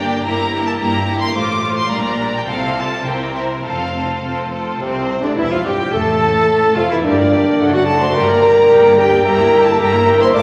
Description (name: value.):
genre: quick classical-period movement for symphony orchestra.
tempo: 108 BPM.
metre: 2/4.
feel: rubato.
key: F major.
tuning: A4 = 440 Hz.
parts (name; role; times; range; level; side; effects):
rich chamber violin section; melody; 0.0-10.4 s; C4 to D6; -26 LUFS; equal; none.
rich chamber violin section; second line; 0.0-10.4 s; F4 to D6; -24 LUFS; equal; none.
rich chamber viola section; accompaniment; 0.0-10.4 s; F#3 to Bb4; -25 LUFS; equal; none.
rich chamber cello section; bass; 0.0-10.4 s; C2 to C3; -28 LUFS; equal; none.
rich chamber double bass section; bass; 0.0-10.4 s; E1 to C2; -29 LUFS; equal; none.
bright concert flute; second line; 4.8-10.4 s; C4 to A5; -26 LUFS; equal; none.
warm clarinet; second line; 4.8-10.4 s; C4 to F5; -26 LUFS; equal; none.
mellow bassoon; accompaniment; 4.8-10.4 s; C3 to Bb3; -26 LUFS; equal; none.
dark French horn section; sustained chords; 4.8-10.4 s; C4 to D5; -16 LUFS; equal; none.
timpani; percussion; 5.9-6.7 s; F2; -31 LUFS; equal; none.
room: wet scoring stage reverb, RT60 2.0 s.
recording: vinyl crackle.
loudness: -15 LUFS.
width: mono.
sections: 0.0-4.8 A section; 4.8-10.4 B section.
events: none.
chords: 0.2 Edim/G; 1.3 F/A; 1.9 Gm/Bb; 2.5 F/C; 3.1 C7; 3.6 F; 4.8 Csus2; 5.4 Em; 5.9 F/A; 7.0 Gm; 7.6 D/F#; 8.1 Gm; 9.2 Edim/G.